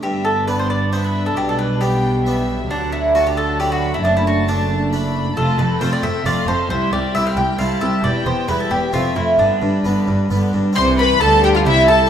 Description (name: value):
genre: classical, baroque-style concerto movement with solo episodes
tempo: 134 BPM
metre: 3/4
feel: straight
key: G major, C major from 5.4 s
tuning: A4 = 440 Hz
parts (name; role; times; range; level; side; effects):
- mandolin; melody; 0.0-12.1 s; D4 to G5; -19 LUFS; right 1 dB; none
- warm chamber violin section; melody; 0.0-12.1 s; B4 to C6; -26 LUFS; left 2 dB; none
- warm studio violin section; second line; 0.0-12.1 s; B3 to C5; -23 LUFS; left 4 dB; none
- dark chamber viola section; accompaniment; 0.0-12.1 s; D3 to C4; -26 LUFS; right 1 dB; none
- harpsichord; accompaniment; 0.0-12.1 s; C2 to F4; -24 LUFS; equal; none
- dark chamber cello section; bass; 0.0-12.1 s; C2 to D3; -24 LUFS; right 2 dB; none
- dark studio double bass section; bass; 0.0-12.1 s; E1 to D2; -23 LUFS; right 2 dB; none
room: wet recital hall reverb, RT60 1.6 s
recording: none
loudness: -15 LUFS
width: side -9 dB against mid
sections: 0.0-10.8 A section; 10.8-12.1 B section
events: none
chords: 0.0 G; 1.4 G/B; 2.7 D; 4.0 D/F#; 5.4 F; 6.7 C; 8.0 Em; 8.9 F; 9.4 G; 10.8 C